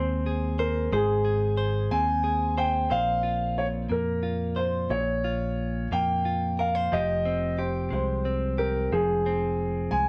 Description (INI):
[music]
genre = six-eight pop ballad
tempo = 60 BPM (dotted quarters)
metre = 6/8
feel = straight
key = unclear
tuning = A4 = 440 Hz
[part]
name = warm concert grand piano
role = melody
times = 0.0-10.1 s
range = Ab4 to Ab5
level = -29 LUFS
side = equal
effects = none
[part]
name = direct-recorded clean electric guitar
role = accompaniment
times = 0.0-10.1 s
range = Bb2 to C5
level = -34 LUFS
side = equal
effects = none
[part]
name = fingered electric bass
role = bass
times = 0.0-10.1 s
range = F1 to F2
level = -32 LUFS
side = equal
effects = none
[sound]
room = moderate studio reverb, RT60 0.6 s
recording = band playing live in one room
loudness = -26 LUFS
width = mono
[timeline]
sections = 0.0-10.1 A section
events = none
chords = 0.0 Ab; 2.9 Bbmadd9; 6.9 Fmadd9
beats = | 0.92 1.92 | 2.91 3.91 | 4.91 5.91 | 6.92 7.92 | 8.92 9.92